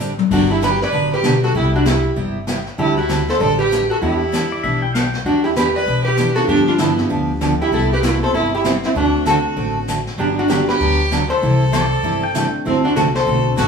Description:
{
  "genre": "country, western swing",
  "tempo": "195 BPM",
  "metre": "4/4",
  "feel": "swing 62% on 8ths",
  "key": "G major",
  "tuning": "A4 = 440 Hz",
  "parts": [
    { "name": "picked steel-string acoustic guitar", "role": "accompaniment", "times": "0.0-13.7 s", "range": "C3 to A4", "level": "-22 LUFS", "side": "right 2 dB", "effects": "none" },
    { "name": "upright bass", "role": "bass", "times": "0.0-13.7 s", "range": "G1 to G2", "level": "-22 LUFS", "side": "left 2 dB", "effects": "none" },
    { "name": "jazz brush drum kit", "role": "drums", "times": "0.0-13.7 s", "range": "brushed snare drum, crash cymbal, hi-hat, kick drum, snare drum, toms", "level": "-24 LUFS", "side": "left 4 dB", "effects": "none" },
    { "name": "hollow-body jazz guitar", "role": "melody", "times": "0.3-13.7 s", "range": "B3 to D5", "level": "-18 LUFS", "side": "equal", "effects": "none" },
    { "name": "clear fiddle", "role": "second line", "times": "0.3-13.7 s", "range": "B3 to B4", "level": "-24 LUFS", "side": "right 2 dB", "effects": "none" },
    { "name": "pedal steel guitar", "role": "second line", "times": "4.5-5.2, 11.7-12.6 s", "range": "D5 to G5", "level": "-24 LUFS", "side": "left 3 dB", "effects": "none" },
    { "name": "warm upright piano", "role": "accompaniment", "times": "6.4-13.7 s", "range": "G3 to A4", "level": "-26 LUFS", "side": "left 2 dB", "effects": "none" }
  ],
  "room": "moderate studio reverb, RT60 0.7 s",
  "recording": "band playing live in one room, studio reverb",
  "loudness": "-15 LUFS",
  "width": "side -6 dB against mid",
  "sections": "0.0-13.7 A section",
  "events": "drum fill 0.0-0.3",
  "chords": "0.3 Gmaj7; 1.5 Cmaj7; 2.8 D9sus4; 4.0 Em7; 6.5 G7; 7.7 Cmaj7; 9.0 D7; 10.2 Gmaj7; 11.4 C69; 12.7 D7"
}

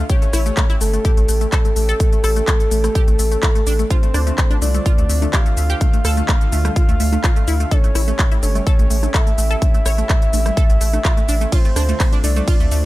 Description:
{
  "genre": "progressive house",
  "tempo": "126 BPM",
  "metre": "4/4",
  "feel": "straight",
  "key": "D minor",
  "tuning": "A4 = 439 Hz",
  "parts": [
    { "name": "lush unison pad", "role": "sustained chords", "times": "0.0-12.9 s", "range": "D3 to G4", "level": "-30 LUFS", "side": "right 1 dB", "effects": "chorus, sidechain pumping" },
    { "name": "tight sequenced synth", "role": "arpeggios", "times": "0.0-12.8 s", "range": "A3 to C#5", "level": "-26 LUFS", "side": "equal", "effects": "chorus, cassette tape, sidechain pumping, dub echo" },
    { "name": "round analog bass", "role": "bass", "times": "0.0-12.9 s", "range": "G1 to D2", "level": "-18 LUFS", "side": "equal", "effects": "sidechain pumping" },
    { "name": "soft octave-layered synth lead", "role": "melody", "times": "0.1-12.9 s", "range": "A4 to F5", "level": "-24 LUFS", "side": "equal", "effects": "chorus, dub echo" },
    { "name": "electronic kick drum", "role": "drums", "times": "0.1-12.6 s", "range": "none", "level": "-15 LUFS", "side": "equal", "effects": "studio reverb" },
    { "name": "pop drum kit", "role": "drums", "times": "0.1-12.8 s", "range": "handclaps, hi-hat, ride cymbal, rim click, shaker", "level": "-25 LUFS", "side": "left 1 dB", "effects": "studio reverb" },
    { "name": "congas", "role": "percussion", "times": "3.9-12.5 s", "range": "none", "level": "-30 LUFS", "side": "left 3 dB", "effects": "sidechain pumping on perc, studio reverb" }
  ],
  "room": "digital ambience",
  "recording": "none",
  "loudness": "-14 LUFS",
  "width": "side -17 dB against mid",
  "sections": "0.0-12.9 A section",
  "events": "none",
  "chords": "0.1 A7; 3.9 Dm7; 7.7 A7; 11.5 Dm7"
}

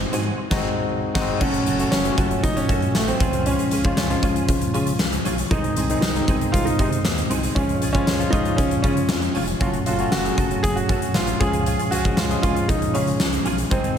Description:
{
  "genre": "1980s-style pop",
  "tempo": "117 BPM",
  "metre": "4/4",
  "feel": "straight",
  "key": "Db major",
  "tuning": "A4 = 440 Hz",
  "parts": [
    { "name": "warm grand piano", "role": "melody", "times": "0.0-14.0 s", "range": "A3 to C5", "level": "-25 LUFS", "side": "right 2 dB", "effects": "tape echo" },
    { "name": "barky tine electric piano", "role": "accompaniment", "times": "0.0-14.0 s", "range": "Eb3 to Ab4", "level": "-26 LUFS", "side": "left 5 dB", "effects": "none" },
    { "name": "clean electric guitar", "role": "riff", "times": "0.0-14.0 s", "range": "C4 to A4", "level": "-31 LUFS", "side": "right 4 dB", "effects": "ensemble chorus, slapback echo, tape echo" },
    { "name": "solid FM bass", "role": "bass", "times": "0.0-13.9 s", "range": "F1 to Db3", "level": "-27 LUFS", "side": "equal", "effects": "none" },
    { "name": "huge arena drum kit", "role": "drums", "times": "0.1-14.0 s", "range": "crash cymbal, hi-hat, kick drum, snare drum, tambourine", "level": "-22 LUFS", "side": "equal", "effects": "none" }
  ],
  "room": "moderate lush hall reverb, RT60 2.0 s, studio reverb",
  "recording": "big arena sound",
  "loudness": "-18 LUFS",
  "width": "side -8 dB against mid",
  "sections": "0.0-1.4 A section; 1.4-14.0 B section",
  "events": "band accent 0.4-1.4",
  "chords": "0.0 Ab7; 1.4 Gbm; 3.2 Db; 5.5 Ab/C; 7.6 Db; 9.6 Gbm; 11.4 Db"
}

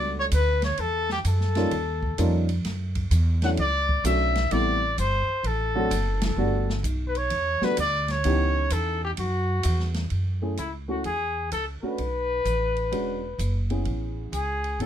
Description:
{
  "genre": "jazz, small-group swing and bop",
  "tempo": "128 BPM",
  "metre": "4/4",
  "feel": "swing 66% on 8ths",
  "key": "F# minor from 10.1 s",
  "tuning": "A4 = 440 Hz",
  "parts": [
    { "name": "warm trumpet", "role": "melody", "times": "0.0-14.9 s", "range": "E4 to F#5", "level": "-26 LUFS", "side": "left 2 dB", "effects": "none" },
    { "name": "warm upright piano", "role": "accompaniment", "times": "0.0-14.9 s", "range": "E3 to G#4", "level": "-28 LUFS", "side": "right 1 dB", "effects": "none" },
    { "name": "upright bass", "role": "bass", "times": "0.0-14.9 s", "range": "E1 to G#2", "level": "-26 LUFS", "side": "right 1 dB", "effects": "none" },
    { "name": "open jazz drum kit", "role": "drums", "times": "0.3-14.9 s", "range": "hi-hat, kick drum, ride cymbal, snare drum", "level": "-35 LUFS", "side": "equal", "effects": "none" }
  ],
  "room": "little or no reverb",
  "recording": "none",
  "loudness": "-23 LUFS",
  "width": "side -10 dB against mid",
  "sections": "0.0-10.1 A section; 10.1-14.9 B section",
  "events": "band accent 6.1",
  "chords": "0.0 Gmaj9; 0.8 Emadd9; 1.7 D#9; 2.7 Dmaj9; 4.5 Am7; 5.4 D7; 6.4 Gmaj9; 8.2 C#m7b5; 9.2 Esus2; 10.1 F#m7; 12.0 Asus2; 12.9 E13; 13.9 Amaj9"
}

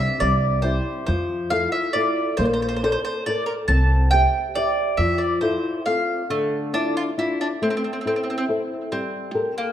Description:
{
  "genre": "italian folk, Italian serenade",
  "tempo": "138 BPM",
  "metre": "3/4",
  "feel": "straight",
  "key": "F major, D minor from 6.3 s",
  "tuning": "A4 = 439 Hz",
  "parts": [
    { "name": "mandolin", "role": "melody", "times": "0.0-9.7 s", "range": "A3 to A5", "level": "-24 LUFS", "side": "right 1 dB", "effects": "analog delay" },
    { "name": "flamenco guitar", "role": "accompaniment", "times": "0.0-9.7 s", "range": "C3 to E5", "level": "-24 LUFS", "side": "left 2 dB", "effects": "none" },
    { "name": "upright bass", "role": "bass", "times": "0.0-5.6 s", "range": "Bb1 to F2", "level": "-22 LUFS", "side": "equal", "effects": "none" }
  ],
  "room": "moderate recital hall reverb, RT60 1.5 s",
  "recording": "dark, warm production",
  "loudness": "-20 LUFS",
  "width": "side -10 dB against mid",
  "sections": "0.0-6.3 A section; 6.3-9.7 B section",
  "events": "none",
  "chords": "0.2 C; 1.1 Fmaj7; 2.4 Bbmaj7; 3.7 C; 5.0 Fmaj7; 6.3 Dmadd9; 7.6 Am; 8.9 Gmadd9"
}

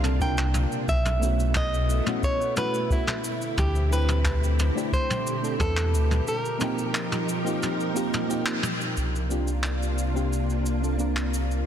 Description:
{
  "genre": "sunset chillout",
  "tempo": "89 BPM",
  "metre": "4/4",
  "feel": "straight",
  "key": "unclear",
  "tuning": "A4 = 440 Hz",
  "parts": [
    { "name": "flamenco guitar", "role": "melody", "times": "0.0-8.3 s", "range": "E4 to G5", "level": "-30 LUFS", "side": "right 1 dB", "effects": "tape echo" },
    { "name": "mellow FM electric piano", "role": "accompaniment", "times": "0.0-11.7 s", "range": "A3 to B4", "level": "-31 LUFS", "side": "moving between left 7 dB and right 4 dB", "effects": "chorus, phaser, auto-pan, cassette tape, tape echo" },
    { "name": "soft string machine", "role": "sustained chords", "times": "0.0-11.6 s", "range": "C3 to Bb4", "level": "-31 LUFS", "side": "equal", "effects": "ensemble chorus" },
    { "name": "round analog bass", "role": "bass", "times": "0.0-11.6 s", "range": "B1 to E2", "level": "-24 LUFS", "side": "equal", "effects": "none" },
    { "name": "jazz brush drum kit", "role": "drums", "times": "0.0-11.6 s", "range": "cabasa, handclaps, toms", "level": "-31 LUFS", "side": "equal", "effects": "none" },
    { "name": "electronic kick drum", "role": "drums", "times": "0.2-5.7 s", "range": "none", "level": "-27 LUFS", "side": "equal", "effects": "none" }
  ],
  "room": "light reverb, small room ambience",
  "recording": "dense, heavily limited modern master",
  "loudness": "-23 LUFS",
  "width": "side -9 dB against mid",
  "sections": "0.0-9.0 A section; 9.0-11.7 B section",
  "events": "break 6.3-9.0; band accent 8.5-8.8",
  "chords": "0.0 C9sus4; 0.9 B9sus4; 3.2 D9sus4; 6.3 F9sus4; 9.0 C9sus4"
}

